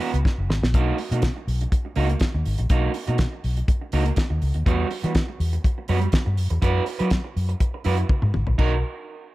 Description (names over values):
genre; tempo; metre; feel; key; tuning
disco; 122 BPM; 4/4; straight; B major; A4 = 436 Hz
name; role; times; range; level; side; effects
electric guitar at the edge of break-up; accompaniment; 0.0-8.7 s; G3 to B4; -28 LUFS; right 4 dB; spring reverb
damped 70s drum kit; drums; 0.0-8.7 s; crash cymbal, hi-hat, kick drum, snare drum, toms; -23 LUFS; equal; none
vintage muted fingered electric bass; bass; 0.1-8.8 s; F#1 to F#3; -22 LUFS; equal; none
room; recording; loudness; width
studio ambience; none; -20 LUFS; side -17 dB against mid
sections
0.0-8.6 A section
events
drum fill 0.2-0.7, 8.1-8.6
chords
0.0 F#7sus4; 0.7 Bmaj7; 4.7 Emadd9; 6.4 F#7sus4; 8.6 Bmaj7